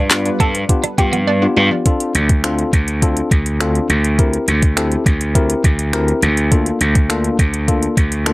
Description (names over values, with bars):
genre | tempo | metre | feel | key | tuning
dance-pop | 103 BPM | 4/4 | straight | D minor | A4 = 441 Hz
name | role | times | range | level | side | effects
hollow square pluck | melody | 0.0-1.7 s | D4 to A5 | -23 LUFS | right 2 dB | chorus, sidechain pumping, tape echo
warm analog pad | sustained chords | 0.0-1.8 s | G3 to B4 | -29 LUFS | equal | chorus, sidechain pumping
wide unison pluck | arpeggios | 0.0-1.8 s | F3 to G4 | -28 LUFS | left 1 dB | sidechain pumping, tape echo
twelve-string electric guitar | riff | 0.0-1.2 s | B3 to D4 | -22 LUFS | right 5 dB | wide subtle chorus
gritty slap bass | bass | 0.0-8.3 s | D2 to G2 | -16 LUFS | equal | overdrive, sidechain pumping
tine electric piano | accompaniment | 0.1-8.3 s | Bb3 to Bb4 | -19 LUFS | left 2 dB | sidechain pumping
smooth R&B drum kit | drums | 0.1-8.3 s | finger snaps, handclaps, hi-hat, kick drum, snare drum | -15 LUFS | equal | none
room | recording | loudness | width
little or no reverb | none | -13 LUFS | side -21 dB against mid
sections
0.0-1.9 A section; 1.9-8.3 B section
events
silent gap 1.3-1.9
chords
0.0 G7; 1.9 Dm7; 4.2 C7/D; 6.5 Bbmaj7/D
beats
0.11 0.69 1.27 | 1.86 2.44 3.02 3.60 | 4.19 4.77 5.35 5.93 | 6.52 7.10 7.68 8.27